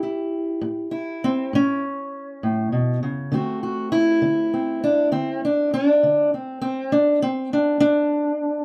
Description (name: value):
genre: acoustic country blues, solo or duo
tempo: 67 BPM (dotted quarters)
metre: 12/8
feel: straight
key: unclear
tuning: A4 = 441 Hz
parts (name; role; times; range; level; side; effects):
- fingerpicked steel-string acoustic guitar; solo; 0.0-8.6 s; A2 to G4; -22 LUFS; equal; none
room: light reverb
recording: none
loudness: -22 LUFS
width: mono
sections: 0.0-8.6 A section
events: none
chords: 0.0 A7; 3.3 D7; 6.9 N.C.